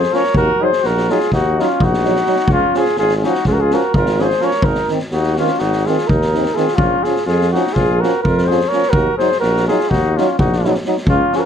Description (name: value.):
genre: balkan folk, Balkan brass band.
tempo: 252 BPM (eighths).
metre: 9/8.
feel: straight.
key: unclear.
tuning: A4 = 443 Hz.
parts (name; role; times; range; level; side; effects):
mellow flugelhorn; melody; 0.0-11.5 s; F4 to Db5; -17 LUFS; equal; none.
warm trumpet; second line; 0.0-11.5 s; Db4 to Bb4; -23 LUFS; left 5 dB; none.
clear tuba; bass; 0.0-11.2 s; Ab1 to F2; -19 LUFS; equal; none.
street-band drum kit; percussion; 0.0-11.4 s; kick drum, snare drum; -21 LUFS; equal; none.
bright trombone; accompaniment; 0.1-11.4 s; C4 to Eb4; -24 LUFS; left 7 dB; none.
clear euphonium; accompaniment; 0.1-11.4 s; Eb3 to Gb3; -20 LUFS; right 5 dB; none.
room: light reverb.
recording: dark, warm production.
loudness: -13 LUFS.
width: side -8 dB against mid.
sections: 0.0-11.5 A section.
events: none.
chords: 0.3 Ebm; 2.5 Db; 4.6 Ab; 6.8 Bbm; 8.9 Ebm.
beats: 0.11 | 0.35 0.58 0.82 1.06 1.30 1.53 1.77 2.01 2.25 | 2.49 2.73 2.96 3.20 3.44 3.68 3.92 4.16 4.39 | 4.63 4.87 5.11 5.35 5.59 5.83 6.07 6.30 6.54 | 6.78 7.02 7.26 7.50 7.74 7.97 8.21 8.45 8.69 | 8.93 9.17 9.41 9.64 9.88 10.12 10.36 10.59 10.83 | 11.07 11.30.